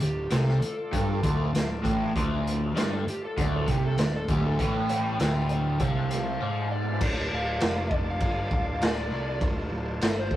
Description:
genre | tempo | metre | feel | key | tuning
blues rock power trio and southern rock | 99 BPM | 4/4 | straight | D minor | A4 = 441 Hz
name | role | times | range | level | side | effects
overdriven slide guitar | melody | 0.0-10.4 s | G4 to G5 | -33 LUFS | left 1 dB | none
overdriven tonewheel organ | sustained chords | 0.0-10.4 s | G3 to F5 | -39 LUFS | right 1 dB | slow rotary speaker
overdriven electric guitar | riff | 0.0-7.0 s | D2 to C3 | -26 LUFS | equal | phaser
fuzz picked electric bass | bass | 0.0-10.3 s | D1 to C2 | -33 LUFS | equal | overdrive
raw garage drum kit | drums | 0.0-10.4 s | crash cymbal, hi-hat, kick drum, snare drum | -29 LUFS | equal | none
room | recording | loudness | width
moderate studio reverb, RT60 0.6 s | rough rehearsal-room recording | -24 LUFS | side -14 dB against mid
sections
0.0-7.0 A section; 7.0-10.4 B section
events
electric slide guitar solo 7.0-10.4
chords
0.0 Dm

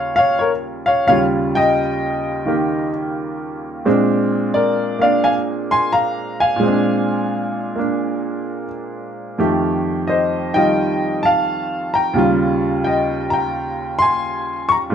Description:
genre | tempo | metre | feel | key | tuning
solo jazz | 87 BPM | 4/4 | swing 68% on 8ths | unclear | A4 = 440 Hz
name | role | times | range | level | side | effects
clear baby grand piano | solo | 0.0-14.9 s | Eb2 to Db6 | -16 LUFS | equal | none
room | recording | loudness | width
moderate studio reverb, RT60 0.7 s | heard from further back in the room | -16 LUFS | side -8 dB against mid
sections
0.0-14.9 A section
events
none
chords
0.0 Eb9; 3.8 Bb9; 9.4 F9; 12.2 Eb9

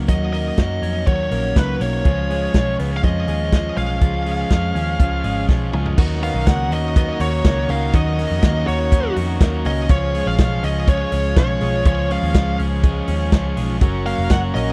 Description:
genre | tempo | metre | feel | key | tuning
jangly indie pop | 122 BPM | 4/4 | straight | unclear | A4 = 440 Hz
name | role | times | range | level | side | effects
crunchy overdriven guitar | accompaniment | 0.0-14.7 s | C#3 to A#4 | -32 LUFS | equal | none
twelve-string electric guitar | arpeggios | 0.0-14.7 s | D#3 to F#4 | -28 LUFS | equal | none
vintage muted picked electric bass | bass | 0.0-14.7 s | E#1 to F#2 | -25 LUFS | equal | none
high-gain lead guitar | melody | 0.1-14.7 s | B4 to F#5 | -27 LUFS | equal | distortion
vintage drum kit | drums | 0.1-14.7 s | crash cymbal, hi-hat, kick drum, ride cymbal, snare drum, toms | -18 LUFS | equal | none
overdriven combo organ | accompaniment | 2.0-14.7 s | C#4 to E#5 | -33 LUFS | equal | none
room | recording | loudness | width
little or no reverb | dry, close 1970s-style studio recording | -19 LUFS | mono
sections
0.0-6.0 A section; 6.0-14.7 B section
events
drum fill 5.5-6.0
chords
0.0 D#m7; 2.1 C#; 6.0 D#m7; 9.9 C#; 13.8 F#

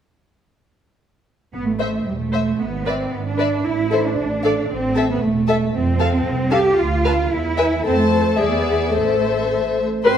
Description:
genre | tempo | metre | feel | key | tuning
quick classical-period movement for string orchestra | 113 BPM | 2/4 | rubato | A minor | A4 = 436 Hz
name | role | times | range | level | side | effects
rich chamber double bass section | bass | 1.5-10.2 s | E1 to F2 | -24 LUFS | right 3 dB | none
rich studio cello section | bass | 1.5-10.2 s | A2 to G4 | -20 LUFS | right 2 dB | none
warm chamber violin section | melody | 1.8-10.2 s | E5 to C6 | -28 LUFS | left 6 dB | none
warm chamber violin section | second line | 1.8-10.2 s | C4 to F5 | -24 LUFS | left 5 dB | none
rich chamber viola section | accompaniment | 1.8-10.1 s | G#4 to C5 | -22 LUFS | left 2 dB | none
room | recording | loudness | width
moderate scoring stage reverb, RT60 1.7 s | none | -17 LUFS | side -9 dB against mid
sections
1.5-10.1 A section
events
none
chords
1.5 Am; 2.6 E7/G# (rootless); 3.7 A5; 4.2 D5/A; 4.7 Am; 5.7 F; 6.8 Bdim/D; 7.3 E5; 7.9 F; 8.4 E7; 8.9 Am

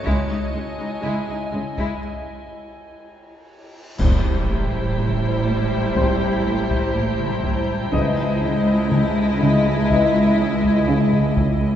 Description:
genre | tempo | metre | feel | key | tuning
cinematic, suspense film score | 61 BPM | 4/4 | straight | unclear | A4 = 441 Hz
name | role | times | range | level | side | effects
muted studio violin section | second line | 0.0-11.8 s | C#4 to E4 | -29 LUFS | left 3 dB | none
icy glass pad | sustained chords | 0.0-11.8 s | E4 to G#5 | -29 LUFS | right 2 dB | chorus, built-in reverb
clear concert grand piano | texture | 0.0-11.8 s | C5 to D#5 | -35 LUFS | left 3 dB | none
muted symphonic violin section | melody | 0.1-11.8 s | C5 to D#5 | -31 LUFS | left 2 dB | none
muted symphonic viola section | accompaniment | 0.1-11.8 s | G3 to G#3 | -25 LUFS | left 2 dB | none
muted symphonic cello section | riff | 0.1-11.7 s | A2 to C#4 | -27 LUFS | right 1 dB | none
muted studio double bass section | bass | 0.1-11.8 s | A1 to C#2 | -26 LUFS | right 2 dB | none
muted symphonic cello section | bass | 0.1-11.8 s | C#2 to A2 | -25 LUFS | right 2 dB | none
taiko ensemble | drums | 0.1-11.8 s | none | -26 LUFS | equal | none
cymbal swell, clash cymbals and concert bass drum | percussion | 0.1-5.9 s | none | -28 LUFS | equal | none
reverse cymbal and sub drop | sound effects | 3.9-7.9 s | none | -31 LUFS | right 1 dB | none
mellow French horn section | sustained chords | 4.0-10.3 s | E3 to D#5 | -27 LUFS | left 4 dB | none
timpani | percussion | 4.0-5.4 s | A2 | -28 LUFS | equal | none
muted studio violin section | texture | 4.0-11.3 s | A5 to G6 | -35 LUFS | left 3 dB | none
room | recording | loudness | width
wet concert hall reverb, RT60 2.4 s | heard from further back in the room, nothing above 7.9 kHz | -18 LUFS | side -10 dB against mid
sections
0.0-4.0 A section; 4.0-11.8 B section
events
break 2.0-4.0; drum fill 3.0-4.0; reverse cymbal 3.9; band accent 4.0-5.0; impact 4.0-7.9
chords
0.1 C#madd9; 4.0 Am7; 7.9 C#madd9

